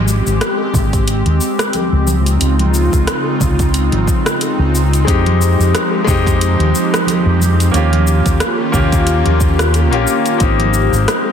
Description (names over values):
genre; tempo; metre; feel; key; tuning
sunset chillout; 90 BPM; 4/4; swing 56% on 16ths; Ab major; A4 = 440 Hz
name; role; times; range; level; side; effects
airy breathy pad; sustained chords; 0.0-11.3 s; Db3 to G4; -18 LUFS; equal; chorus
fingered electric bass; bass; 0.0-11.0 s; Ab1 to F2; -14 LUFS; equal; none
deep house drum kit; drums; 0.1-11.2 s; hi-hat, rim click, shaker; -21 LUFS; equal; overdrive
electronic kick drum; drums; 0.7-10.6 s; none; -17 LUFS; equal; overdrive
congas; percussion; 0.7-10.7 s; none; -24 LUFS; right 3 dB; none
clear grand piano; accompaniment; 5.0-11.3 s; Ab3 to G4; -17 LUFS; moving between left 8 dB and right 5 dB; auto-pan, tape echo
room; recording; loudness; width
moderate recital hall reverb, RT60 1.7 s, digital ambience; dense, heavily limited modern master; -12 LUFS; side -8 dB against mid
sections
0.0-11.3 A section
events
none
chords
0.0 Abmaj7; 2.1 Dbmaj9; 5.1 Fm7; 7.7 Eb7; 10.4 Abmaj7